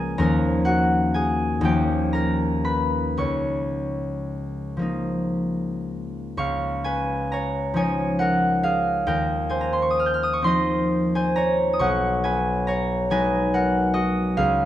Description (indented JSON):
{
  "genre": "classical, solo harp piece",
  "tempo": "36-48 BPM (dotted quarters)",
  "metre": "6/8",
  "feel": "rubato",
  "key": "Db mixolydian",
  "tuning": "A4 = 441 Hz",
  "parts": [
    { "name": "concert harp", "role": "solo", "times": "0.0-14.7 s", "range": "Cb2 to G6", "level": "-20 LUFS", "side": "equal", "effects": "none" }
  ],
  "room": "wet recital hall reverb, RT60 1.7 s",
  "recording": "dark, warm production",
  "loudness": "-20 LUFS",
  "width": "side -12 dB against mid",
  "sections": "0.0-6.4 A section; 6.4-14.7 A section",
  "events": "none",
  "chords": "0.2 Ebm9; 1.6 Eb9; 3.2 Db69; 6.4 Dbadd9; 9.1 Eb13; 11.8 Cb69",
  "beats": "| 0.19 1.62 | 3.17 4.79 | 6.37 7.75 | 9.06 10.43 | 11.79 13.10 | 14.37"
}